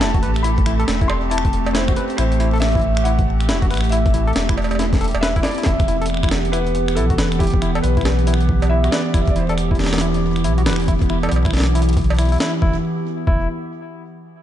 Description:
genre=IDM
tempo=138 BPM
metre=4/4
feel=swing 62% on 16ths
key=E minor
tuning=A4 = 441 Hz
part: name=felt-muted upright piano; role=melody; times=0.0-9.6 s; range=G4 to C6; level=-25 LUFS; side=left 1 dB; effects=ping-pong delay
part: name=warbly tape-like pad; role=sustained chords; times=0.0-12.8 s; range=E3 to F#5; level=-23 LUFS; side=right 2 dB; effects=chorus, built-in reverb, vintage 12-bit sampler grit, sidechain pumping
part: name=barky tine electric piano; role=arpeggios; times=0.0-13.5 s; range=E4 to B4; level=-28 LUFS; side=left 2 dB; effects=medium stereo tremolo, low-pass filter, ping-pong delay
part: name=warm sub bass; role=bass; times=0.0-13.5 s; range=E1 to B1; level=-20 LUFS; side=equal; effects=none
part: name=jungle sampler-style drum kit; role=drums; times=0.0-12.5 s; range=cowbell, finger snaps, hi-hat, snare drum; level=-24 LUFS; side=equal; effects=overdrive
part: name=pulsing gated texture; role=texture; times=0.0-5.7 s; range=A4 to A5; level=-37 LUFS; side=right 2 dB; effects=none
part: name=electronic kick drum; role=drums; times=0.1-13.4 s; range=none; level=-19 LUFS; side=equal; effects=overdrive
room=light reverb, digital ambience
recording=dark, warm production, nothing above 10.7 kHz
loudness=-16 LUFS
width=side -11 dB against mid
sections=0.0-5.7 A section; 5.7-12.6 B section; 12.6-14.4 C section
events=drum fill 4.8-5.7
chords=0.0 Am7; 5.7 Emadd9; 12.6 N.C.

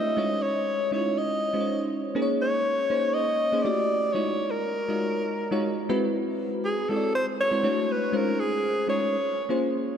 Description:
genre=pop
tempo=120 BPM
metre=4/4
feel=straight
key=unclear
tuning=A4 = 440 Hz
part: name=breathy alto saxophone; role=melody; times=0.0-9.6 s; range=Ab4 to Eb5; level=-26 LUFS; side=equal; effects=analog delay
part: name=bell-like FM electric piano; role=accompaniment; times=0.0-10.0 s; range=Ab3 to Eb5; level=-27 LUFS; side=left 1 dB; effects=analog chorus
room=wet cathedral reverb, RT60 5.3 s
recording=dreamy mix soaked in reverb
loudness=-23 LUFS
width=side -8 dB against mid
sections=0.0-10.0 A section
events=none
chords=0.2 Dbmaj9; 2.2 Bbm11; 3.7 Em11; 4.2 Ebm11; 5.9 Ab7alt; 7.6 Dmaj9; 8.1 Dbmaj9; 9.1 Bbm9

